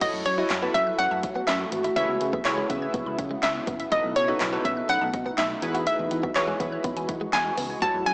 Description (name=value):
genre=dance-pop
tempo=123 BPM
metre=4/4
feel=straight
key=E major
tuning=A4 = 441 Hz
part: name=hollow square pluck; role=melody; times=0.0-8.1 s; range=C#5 to A5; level=-25 LUFS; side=equal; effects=chorus, digital delay
part: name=chorused retro synth keys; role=accompaniment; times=0.0-8.0 s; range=D#4 to E5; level=-31 LUFS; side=equal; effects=tremolo, sidechain pumping
part: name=shimmering ambient pad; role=sustained chords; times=0.3-8.1 s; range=B2 to F#4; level=-33 LUFS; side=equal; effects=chorus, built-in reverb, sidechain pumping
part: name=mallet-like synth pluck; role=arpeggios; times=0.0-8.1 s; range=D#3 to G#6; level=-38 LUFS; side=equal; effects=none
part: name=direct-recorded clean electric guitar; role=riff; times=0.0-8.1 s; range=G#3 to F#4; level=-33 LUFS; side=equal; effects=analog chorus
part: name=fingered electric bass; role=bass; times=0.0-8.1 s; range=F#1 to F#3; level=-35 LUFS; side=equal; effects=sidechain pumping
part: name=punchy analog drum machine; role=drums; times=0.0-8.1 s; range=crash cymbal, handclaps, hi-hat, kick drum, snare drum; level=-31 LUFS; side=equal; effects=none
room=light reverb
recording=blown-out, overdriven recording, overdrive, small speaker sound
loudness=-23 LUFS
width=side -28 dB against mid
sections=0.0-8.1 A section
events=none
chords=0.0 F#m7; 2.0 C#m7; 3.9 B7; 5.6 Eadd9